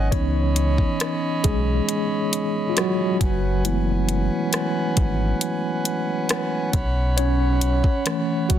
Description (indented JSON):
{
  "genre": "contemporary R&B",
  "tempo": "68 BPM",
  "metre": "4/4",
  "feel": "straight",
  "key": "C# minor",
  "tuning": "A4 = 442 Hz",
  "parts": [
    { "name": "mellow tine electric piano", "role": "accompaniment", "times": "0.0-8.6 s", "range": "E3 to C#5", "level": "-24 LUFS", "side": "equal", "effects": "medium stereo tremolo" },
    { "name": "hand-pumped harmonium", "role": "sustained chords", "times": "0.0-8.6 s", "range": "C#4 to B5", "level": "-28 LUFS", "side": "right 1 dB", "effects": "none" },
    { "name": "rubbery square bass", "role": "bass", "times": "0.0-8.6 s", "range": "F#1 to C#2", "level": "-22 LUFS", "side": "equal", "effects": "none" },
    { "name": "smooth R&B drum kit", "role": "drums", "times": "0.1-8.6 s", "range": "hi-hat, kick drum, rim click", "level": "-24 LUFS", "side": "equal", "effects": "none" }
  ],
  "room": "little or no reverb",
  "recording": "dense, heavily limited modern master",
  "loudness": "-20 LUFS",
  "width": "side -10 dB against mid",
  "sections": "0.0-8.6 A section",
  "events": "tine electric piano solo 0.0-8.6",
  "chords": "0.1 C#m9; 3.2 F#m11; 6.7 B9sus4"
}